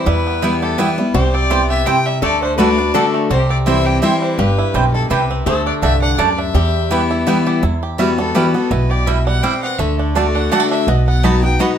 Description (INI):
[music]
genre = bluegrass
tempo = 167 BPM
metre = 3/4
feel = swing 55% on 8ths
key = E minor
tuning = A4 = 440 Hz
[part]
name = bluegrass banjo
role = melody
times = 0.0-11.8 s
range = G3 to G4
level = -24 LUFS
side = right 7 dB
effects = slapback echo
[part]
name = clear fiddle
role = melody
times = 0.0-11.8 s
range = G4 to A5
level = -22 LUFS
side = left 2 dB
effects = none
[part]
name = lap resonator guitar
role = second line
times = 0.0-7.6 s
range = E4 to B4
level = -23 LUFS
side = left 5 dB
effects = none
[part]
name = picked steel-string acoustic guitar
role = accompaniment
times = 0.0-11.8 s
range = E2 to F#4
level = -18 LUFS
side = left 2 dB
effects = none
[part]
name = upright bass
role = bass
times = 0.1-11.6 s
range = G1 to E2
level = -18 LUFS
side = right 1 dB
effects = none
[part]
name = mandolin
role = stabs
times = 0.4-11.7 s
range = G3 to B5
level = -20 LUFS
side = right 5 dB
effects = none
[sound]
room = moderate studio reverb, RT60 0.7 s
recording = none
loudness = -13 LUFS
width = side -9 dB against mid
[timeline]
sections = 0.0-7.6 A section; 7.6-11.8 B section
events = fiddle solo 7.6-11.8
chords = 0.1 Em; 1.1 C; 2.2 D; 3.3 C; 5.5 D; 6.5 Em; 7.6 Emadd9; 9.8 D; 10.9 B